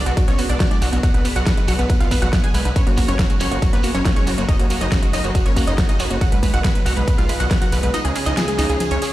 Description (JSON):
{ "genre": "uplifting trance", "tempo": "139 BPM", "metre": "4/4", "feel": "straight", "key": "F# major", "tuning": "A4 = 439 Hz", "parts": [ { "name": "wide unison pluck", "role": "melody", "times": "0.0-9.1 s", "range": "B3 to G#5", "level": "-25 LUFS", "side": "right 1 dB", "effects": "vintage 12-bit sampler grit, sidechain pumping, dub echo" }, { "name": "supersaw stab", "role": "second line", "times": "0.0-9.1 s", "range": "F#4 to G#5", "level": "-30 LUFS", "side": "equal", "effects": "sidechain pumping, dub echo" }, { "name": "lush unison pad", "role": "sustained chords", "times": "0.0-9.1 s", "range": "C#3 to A#4", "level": "-30 LUFS", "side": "left 1 dB", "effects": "chorus, sidechain pumping" }, { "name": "wide unison pluck", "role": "arpeggios", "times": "0.1-9.1 s", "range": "D#3 to E#4", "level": "-27 LUFS", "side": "right 1 dB", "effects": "sidechain pumping, dub echo" }, { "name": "gritty driven synth bass", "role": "bass", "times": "0.1-9.0 s", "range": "F#1 to C#2", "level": "-22 LUFS", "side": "equal", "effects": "distortion, sidechain pumping" }, { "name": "big-room dance drum kit", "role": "drums", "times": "0.1-9.1 s", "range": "hi-hat, ride cymbal, snare drum", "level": "-27 LUFS", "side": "equal", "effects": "overdrive" }, { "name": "shekere", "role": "percussion", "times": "0.1-9.1 s", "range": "none", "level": "-31 LUFS", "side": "right 4 dB", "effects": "none" }, { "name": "electronic kick drum", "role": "drums", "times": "0.2-7.6 s", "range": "none", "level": "-18 LUFS", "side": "equal", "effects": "overdrive" } ], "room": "little or no reverb", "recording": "played on a big sound system in a bare room, stone room reverb", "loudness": "-16 LUFS", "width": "side -15 dB against mid", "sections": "0.0-9.1 A section", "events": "kick drops out 7.9-9.1", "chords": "0.0 Bm6; 2.8 F#add9; 6.2 B6; 7.9 C#" }